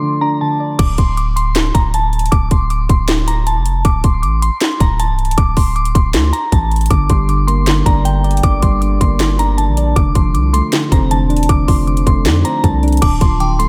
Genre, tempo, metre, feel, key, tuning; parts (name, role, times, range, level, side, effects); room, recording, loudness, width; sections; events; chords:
hip hop, trap; 157 BPM; 4/4; half-time; D minor; A4 = 440 Hz
glassy synth bell; melody; 0.0-13.7 s; G5 to D6; -22 LUFS; equal; chorus, tremolo, low-pass filter, delay
soft electric-piano-like synth keys; accompaniment; 0.0-0.8, 6.9-13.7 s; D3 to D5; -21 LUFS; equal; chorus, low-pass filter
long sustained 808-style bass; bass; 0.8-13.7 s; C1 to F2; -18 LUFS; equal
trap drum kit; drums; 0.8-13.7 s; crash cymbal, handclaps, hi-hat, kick drum, snare drum; -18 LUFS; equal
delicate synth tine bell; second line; 13.0-13.7 s; G5 to A5; -25 LUFS; equal; chorus, delay
moderate lush hall reverb, RT60 1.7 s, digital ambience; dreamy mix soaked in reverb; -14 LUFS; mono
0.8-13.0 A section
0.0 Dm; 0.8 D5; 6.9 Gm; 10.0 F6; 13.0 Dm